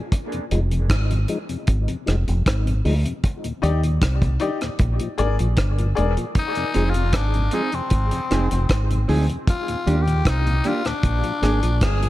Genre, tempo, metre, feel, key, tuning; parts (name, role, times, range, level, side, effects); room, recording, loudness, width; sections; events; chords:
dub reggae; 77 BPM; 4/4; straight; F dorian; A4 = 440 Hz
deep reggae drum kit; drums; 0.1-12.1 s; hi-hat, kick drum, rim click; -23 LUFS; equal
mellow tonewheel organ; accompaniment; 0.3-12.1 s; Eb2 to Eb4; -29 LUFS; left 2 dB; overdrive, chorus vibrato, slow rotary speaker, dub echo
deep dub fingered electric bass; bass; 0.5-12.1 s; E1 to Eb2; -20 LUFS; equal
bongos; percussion; 0.5-0.7 s; -41 LUFS; right 4 dB
bright upright piano; stabs; 3.6-6.1 s; Eb4 to D5; -28 LUFS; left 5 dB; dub echo
growling tenor saxophone; melody; 6.4-12.1 s; C4 to Ab4; -26 LUFS; left 3 dB; dub echo
mellow electric guitar; accompaniment; 6.7-11.7 s; Bb3 to Ab4; -29 LUFS; right 4 dB; dub echo
small room ambience; echo-heavy mix; -19 LUFS; side -16 dB against mid
0.0-12.1 A section
break 0.0-6.4; part muted 0.1-6.4, 6.4-12.1
0.1 Fm7; 3.2 Ebmaj7; 4.8 Bb7; 6.4 Fm7; 9.5 Ebmaj7; 11.0 Bb7